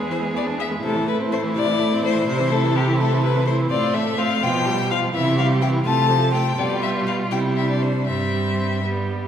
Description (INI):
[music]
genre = quick classical-period movement for string quartet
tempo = 83 BPM (dotted quarters)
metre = 6/8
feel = rubato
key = A minor, C major from 3.7 s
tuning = A4 = 440 Hz
[part]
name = rich violin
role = second line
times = 0.0-9.3 s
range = B3 to A4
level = -27 LUFS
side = left 2 dB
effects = none
[part]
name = rich viola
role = accompaniment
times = 0.0-9.3 s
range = C3 to D4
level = -25 LUFS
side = right 2 dB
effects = none
[part]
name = bright cello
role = bass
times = 0.0-9.3 s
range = E2 to C3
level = -22 LUFS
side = right 2 dB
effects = none
[part]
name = clear violin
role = melody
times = 0.1-8.8 s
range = G4 to A5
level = -24 LUFS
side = left 6 dB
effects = none
[sound]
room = wet recital hall reverb, RT60 1.6 s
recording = recorded in a church or concert hall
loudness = -18 LUFS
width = side -9 dB against mid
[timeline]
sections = 0.0-9.3 A section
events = none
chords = 0.0 E7; 0.8 Am; 2.3 Am/C; 3.7 F/A; 4.4 G7/B; 5.1 C; 5.8 F/C; 6.6 G7/B; 7.3 C; 8.1 C/G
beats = 0.11 | 0.83 1.56 | 2.28 3.00 | 3.71 4.43 | 5.14 5.85 | 6.57 7.31 | 8.07 8.84